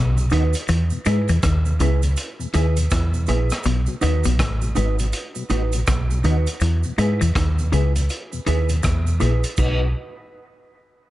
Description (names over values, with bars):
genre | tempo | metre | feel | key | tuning
roots reggae | 81 BPM | 4/4 | swing 62% on 16ths | B mixolydian | A4 = 441 Hz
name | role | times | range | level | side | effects
semi-hollow electric guitar | riff | 0.0-9.3 s | G#2 to G#3 | -27 LUFS | left 5 dB | none
deep dub fingered electric bass | bass | 0.0-9.9 s | G#1 to G#2 | -19 LUFS | equal | none
mellow tonewheel organ | accompaniment | 0.2-9.9 s | E2 to G#4 | -32 LUFS | left 3 dB | chorus vibrato, slow rotary speaker
cabasa | percussion | 0.2-9.9 s | none | -35 LUFS | right 7 dB | none
mellow electric guitar | accompaniment | 0.3-9.8 s | D#4 to B4 | -28 LUFS | right 3 dB | dub echo
crunchy breakbeat drum kit | drums | 0.3-9.8 s | crash cymbal, hi-hat, kick drum, rim click | -26 LUFS | equal | none
room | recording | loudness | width
little or no reverb | echo-heavy mix, nothing above 10.9 kHz | -18 LUFS | side -15 dB against mid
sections
0.0-9.6 A section; 9.6-11.1 B section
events
none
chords
0.0 B; 0.7 E; 3.7 B; 6.6 E; 9.6 B